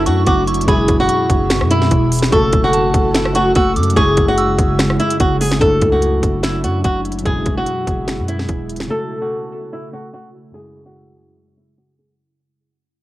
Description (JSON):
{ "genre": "hip hop, trap", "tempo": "146 BPM", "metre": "4/4", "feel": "half-time", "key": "F# minor", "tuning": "A4 = 441 Hz", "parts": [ { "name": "soft synth bell", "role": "second line", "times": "0.0-5.2 s", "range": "A5 to E6", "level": "-23 LUFS", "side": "right 2 dB", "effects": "chorus, cassette tape, tape echo" }, { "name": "warbly lo-fi synth keys", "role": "accompaniment", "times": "0.0-12.2 s", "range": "F#2 to A4", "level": "-22 LUFS", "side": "left 1 dB", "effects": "chorus, low-pass filter, cassette tape" }, { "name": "ethereal airy pad", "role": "sustained chords", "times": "0.0-12.2 s", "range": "F#2 to F#4", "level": "-23 LUFS", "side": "equal", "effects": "ensemble chorus, built-in reverb, low-pass filter, cassette tape" }, { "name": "long sustained 808-style bass", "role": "bass", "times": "0.0-8.9 s", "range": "E1 to F#2", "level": "-21 LUFS", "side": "equal", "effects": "none" }, { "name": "flamenco guitar", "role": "melody", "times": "0.1-12.1 s", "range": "E4 to A4", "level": "-18 LUFS", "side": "equal", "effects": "low-pass filter, cassette tape, tape echo" }, { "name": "trap drum kit", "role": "drums", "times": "0.1-8.9 s", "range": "finger snaps, hi-hat, kick drum, rim click, snare drum", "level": "-18 LUFS", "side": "equal", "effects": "none" } ], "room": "light reverb, digital ambience", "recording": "home recording on cassette", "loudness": "-13 LUFS", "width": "side -16 dB against mid", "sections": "0.0-5.6 A section; 5.6-12.2 B section", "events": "fade-out 5.6-12.2; filter sweep 5.6-12.2", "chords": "0.0 Dadd9/F#; 0.7 E/F#; 2.3 F#m; 4.0 C#m/F#; 5.6 Dadd9/F#; 7.3 E/F#; 8.9 F#m; 10.5 C#m/F#" }